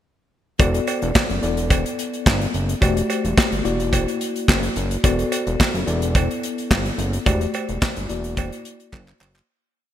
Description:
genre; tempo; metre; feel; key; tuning
early-eighties boogie funk; 108 BPM; 4/4; straight; E minor; A4 = 440 Hz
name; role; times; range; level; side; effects
mellow tine electric piano; accompaniment; 0.6-9.5 s; A3 to D5; -25 LUFS; left 3 dB; medium stereo tremolo
fat analog bass; bass; 0.6-9.4 s; E1 to G1; -24 LUFS; equal; none
modern studio drum kit; drums; 0.6-9.5 s; handclaps, hi-hat, kick drum, snare drum; -20 LUFS; equal; gated reverb
cowbell; percussion; 0.6-9.3 s; none; -29 LUFS; right 7 dB; none
room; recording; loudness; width
light reverb, studio reverb; bright 1980s-style digital production; -18 LUFS; side -11 dB against mid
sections
0.6-9.5 verse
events
fade-out 7.3-9.5; drum fill 8.9-9.5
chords
0.6 Bm7/E; 1.4 Em11; 3.7 F#7b13/E; 5.0 Bm7/E; 5.9 Em11; 8.1 F#7b13/E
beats
| 0.59 1.15 1.71 2.26 | 2.82 3.37 3.93 4.48 | 5.04 5.59 6.15 6.71 | 7.26 7.82 8.37 8.93

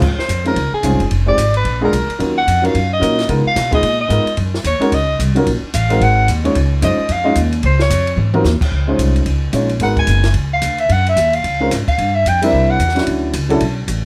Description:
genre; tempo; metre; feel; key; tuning
jazz, small-group swing and bop; 221 BPM; 4/4; swing 61% on 8ths; Db major; A4 = 443 Hz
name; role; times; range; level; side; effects
upright bass; bass; 0.0-14.1 s; F1 to Db3; -19 LUFS; equal; none
compact cocktail drum kit; drums; 0.0-14.0 s; crash cymbal, hi-hat, kick drum, ride cymbal, snare drum, toms; -26 LUFS; equal; none
warm soprano saxophone; melody; 0.2-13.1 s; Ab4 to Ab5; -20 LUFS; equal; none
warm baby grand piano; accompaniment; 0.4-13.6 s; Gb3 to Eb5; -21 LUFS; equal; none
room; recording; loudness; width
light reverb; none; -15 LUFS; mono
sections
0.0-8.7 A section; 8.7-14.1 A section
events
soprano saxophone solo 0.0-14.1; drum fill 8.2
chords
0.0 Dbmaj7; 1.1 Fm7; 1.6 Bb7b9; 2.2 Ebm9; 3.3 Db13; 4.4 Gb6; 5.5 Ebmadd9; 6.0 Ab9; 6.5 Db; 8.2 Ab13; 8.7 Dbmaj7; 9.8 Abm7; 10.3 Db; 10.9 Gbmaj7sus2; 12.0 Gm7; 12.5 C9; 13.1 Dmaj7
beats
| 0.02 0.29 0.56 0.83 | 1.11 1.38 1.65 1.92 | 2.19 2.47 2.74 3.01 | 3.28 3.55 3.83 4.10 | 4.37 4.64 4.91 5.18 | 5.46 5.73 6.00 6.27 | 6.54 6.82 7.09 7.36 | 7.63 7.90 8.17 8.45 | 8.72 8.99 9.26 9.53 | 9.80 10.08 10.35 10.62 | 10.89 11.16 11.44 11.71 | 11.98 12.25 12.52 12.79 | 13.06 13.34 13.61 13.88

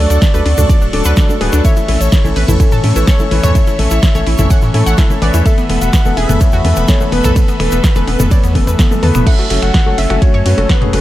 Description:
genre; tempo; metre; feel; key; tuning
progressive house; 126 BPM; 4/4; straight; F# minor; A4 = 440 Hz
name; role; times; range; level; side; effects
soft octave-layered synth lead; melody; 0.0-11.0 s; A4 to F#5; -21 LUFS; left 1 dB; chorus, sidechain pumping, analog delay
filtered supersaw swell; sustained chords; 0.0-11.0 s; F#3 to C#6; -24 LUFS; right 1 dB; phaser, sidechain pumping
dark concert grand piano; stabs; 0.0-11.0 s; E3 to D5; -18 LUFS; left 2 dB; sidechain pumping, analog delay
saturated sub bass; bass; 0.0-11.0 s; D1 to A2; -14 LUFS; equal; sidechain pumping
analog pluck; arpeggios; 0.1-11.0 s; B3 to F#5; -22 LUFS; right 1 dB; chorus, sidechain pumping, analog delay
house drum kit; drums; 0.1-11.0 s; crash cymbal, finger snaps, hi-hat, ride cymbal, snare drum, toms; -21 LUFS; equal; none
egg shaker; percussion; 0.1-9.2 s; none; -29 LUFS; left 2 dB; none
electronic kick drum; drums; 0.2-10.8 s; none; -11 LUFS; equal; none
electronic congas and toms; percussion; 0.5-10.9 s; none; -20 LUFS; left 1 dB; sidechain pumping on perc, sidechain pumping on toms
room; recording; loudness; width
digital ambience; faint mains hum; -9 LUFS; side -15 dB against mid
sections
0.0-9.3 A section; 9.3-11.0 A section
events
drop 0.0-9.3, 9.3-11.0; drum fill 8.8-9.3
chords
0.0 D; 1.6 A; 5.5 Esus4; 9.3 F#m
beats
0.22 0.69 1.17 | 1.65 2.12 2.60 3.08 | 3.55 4.03 4.50 4.98 | 5.46 5.93 6.41 6.88 | 7.36 7.84 8.31 8.79 | 9.27 9.74 10.22 10.70

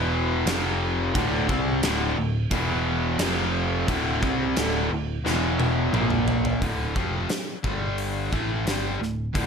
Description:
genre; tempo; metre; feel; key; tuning
hard rock; 88 BPM; 4/4; straight; D dorian; A4 = 441 Hz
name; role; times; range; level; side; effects
distorted electric guitar; riff; 0.0-9.5 s; D2 to C4; -28 LUFS; left 11 dB; distortion
distorted electric guitar; riff; 0.0-9.5 s; D2 to C4; -29 LUFS; right 10 dB; distortion
raw garage guitar; riff; 0.0-6.6 s; D2 to C4; -29 LUFS; equal; overdrive
picked electric bass; bass; 0.0-9.5 s; D1 to C2; -29 LUFS; equal; none
gated 80s drum kit; drums; 0.5-9.5 s; crash cymbal, hi-hat, kick drum, snare drum, toms; -28 LUFS; equal; none
room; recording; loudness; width
light reverb; none; -22 LUFS; side -6 dB against mid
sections
0.0-6.6 A section; 6.6-9.5 B section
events
drum fill 5.2-6.6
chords
0.5 F5; 1.1 D5; 2.5 E5; 3.2 F5; 3.9 D5; 5.2 E5; 5.9 Bb5; 6.6 Dm; 7.6 G5; 8.3 D5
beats
0.47 | 1.15 1.83 2.51 3.19 | 3.88 4.56 5.24 5.93 | 6.61 7.30 7.98 8.66 | 9.35

